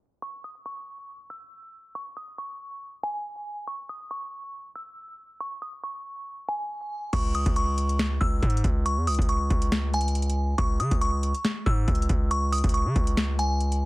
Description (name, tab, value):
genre	hip hop, trap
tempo	139 BPM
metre	4/4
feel	half-time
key	C# minor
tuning	A4 = 441 Hz
part	delicate synth tine bell	melody	0.2-13.9 s	G#5 to E6	-31 LUFS	equal	chorus
part	distorted 808-style bass	bass	7.1-13.9 s	C#2 to C#3	-25 LUFS	equal	distortion
part	booming analog drum machine	drums	7.1-13.8 s	crash cymbal, hi-hat, kick drum, snare drum	-26 LUFS	equal	overdrive
room	little or no reverb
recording	dense, heavily limited modern master, vinyl crackle, low-pass filter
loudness	-24 LUFS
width	side -21 dB against mid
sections	0.2-7.1 A section; 7.1-13.9 B section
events	filter sweep 0.2-7.1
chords	none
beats	| 0.22 0.66 1.09 1.52 | 1.95 2.38 2.81 3.25 | 3.68 4.11 4.54 4.97 | 5.40 5.83 6.27 6.70 | 7.13 7.56 7.99 8.43 | 8.86 9.29 9.72 10.15 | 10.58 11.02 11.45 11.88 | 12.31 12.74 13.17 13.61